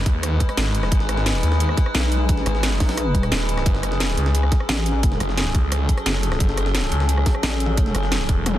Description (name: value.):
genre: dark technical drum and bass.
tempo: 175 BPM.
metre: 4/4.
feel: straight.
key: unclear.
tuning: A4 = 440 Hz.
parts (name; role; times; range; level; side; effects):
metallic inharmonic drone; sustained chords; 0.0-8.6 s; F#3 to B4; -26 LUFS; left 1 dB; chorus, built-in reverb, sidechain pumping.
snarling distorted saw bass; bass; 0.0-8.6 s; D#1 to D#2; -21 LUFS; equal; distortion, tube saturation.
breakbeat sampler-style drum kit; drums; 0.1-8.5 s; hi-hat, snare drum; -33 LUFS; equal; none.
drum and bass drum kit; drums; 0.1-8.6 s; hi-hat, rim click, snare drum, toms; -26 LUFS; equal; overdrive.
electronic kick drum; drums; 0.1-8.4 s; none; -19 LUFS; equal; overdrive.
pulsing pluck wobble bass; bass; 1.9-5.2, 7.4-7.9 s; D#1 to B1; -22 LUFS; equal; chorus.
room: digital ambience.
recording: dense, heavily limited modern master.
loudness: -18 LUFS.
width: side -13 dB against mid.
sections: 0.0-8.6 A section.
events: none.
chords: 0.0 G#m; 3.7 F#madd9.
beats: 0.23 0.57 | 0.92 1.26 1.60 1.95 | 2.29 2.63 2.98 3.32 | 3.66 4.00 4.35 4.69 | 5.03 5.38 5.72 6.06 | 6.40 6.75 7.09 7.43 | 7.78 8.12 8.46.